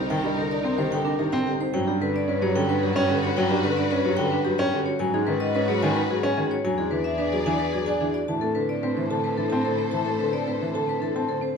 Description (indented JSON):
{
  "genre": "classical, minimalist pattern music",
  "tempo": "110 BPM",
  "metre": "3/4",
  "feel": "straight",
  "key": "A minor from 8.3 s",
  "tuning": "A4 = 439 Hz",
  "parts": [
    { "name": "vibraphone with medium hard mallets", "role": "melody", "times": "0.0-11.6 s", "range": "G4 to A5", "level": "-27 LUFS", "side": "left 7 dB", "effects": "none" },
    { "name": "warm studio violin section", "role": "sustained chords", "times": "0.0-11.6 s", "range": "Eb4 to D5", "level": "-32 LUFS", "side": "left 4 dB", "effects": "none" },
    { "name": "buzzing marimba with soft mallets", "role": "arpeggios", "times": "0.0-11.6 s", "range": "C4 to D5", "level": "-29 LUFS", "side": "right 9 dB", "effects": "none" },
    { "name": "rich cello", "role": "bass", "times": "0.0-11.4 s", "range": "C2 to A2", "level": "-32 LUFS", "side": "right 4 dB", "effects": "none" },
    { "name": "dark baby grand piano", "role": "accompaniment", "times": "0.1-11.5 s", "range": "D3 to D4", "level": "-27 LUFS", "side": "equal", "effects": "none" }
  ],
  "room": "moderate recital hall reverb, RT60 1.7 s",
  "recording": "minimal, uncompressed stereo recording",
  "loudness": "-22 LUFS",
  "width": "side -6 dB against mid",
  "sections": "0.0-8.3 A section; 8.3-11.6 B section",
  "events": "none",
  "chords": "0.0 Cm7; 1.7 Gmaj7; 5.0 G#m7; 6.6 E7; 8.3 Amadd9",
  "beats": "| 0.10 0.64 1.19 | 1.74 2.28 2.83 | 3.37 3.92 4.46 | 5.01 5.55 6.10 | 6.64 7.19 7.74 | 8.28 8.83 9.37 | 9.92 10.46 11.01 | 11.55"
}